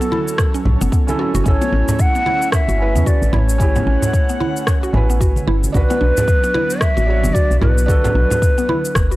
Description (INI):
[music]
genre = organic downtempo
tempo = 112 BPM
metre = 4/4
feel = swing 59% on 16ths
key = B minor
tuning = A4 = 440 Hz
[part]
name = breathy mellow ney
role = melody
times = 0.0-9.2 s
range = A4 to F#5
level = -21 LUFS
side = equal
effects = tape echo
[part]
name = felt-muted upright piano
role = accompaniment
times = 0.0-9.2 s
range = C#4 to C#5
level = -26 LUFS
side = right 3 dB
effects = sidechain pumping, tape echo
[part]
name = airy breathy pad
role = sustained chords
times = 0.0-9.2 s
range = F#3 to F#5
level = -27 LUFS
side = right 2 dB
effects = chorus, sidechain pumping
[part]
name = mallet-like synth pluck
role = arpeggios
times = 0.0-9.2 s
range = B3 to F#4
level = -25 LUFS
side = equal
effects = chorus, phaser, tape echo
[part]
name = electronic shaker and rim click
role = drums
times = 0.0-9.2 s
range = none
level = -24 LUFS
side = left 1 dB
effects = studio ambience
[part]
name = congas and bongos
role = percussion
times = 0.1-8.8 s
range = none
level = -23 LUFS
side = right 1 dB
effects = none
[part]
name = electronic kick drum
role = drums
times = 0.4-9.1 s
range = none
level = -16 LUFS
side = equal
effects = studio ambience
[part]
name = woody FM bass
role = bass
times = 0.7-9.2 s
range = F#1 to E2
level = -16 LUFS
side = equal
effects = sidechain pumping
[sound]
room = small room ambience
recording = dry, gritty hardware recording, transformer saturation, cassette tape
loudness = -14 LUFS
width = side -17 dB against mid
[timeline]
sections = 0.0-9.2 A section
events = none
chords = 0.0 F#m7; 1.5 A; 5.7 Bm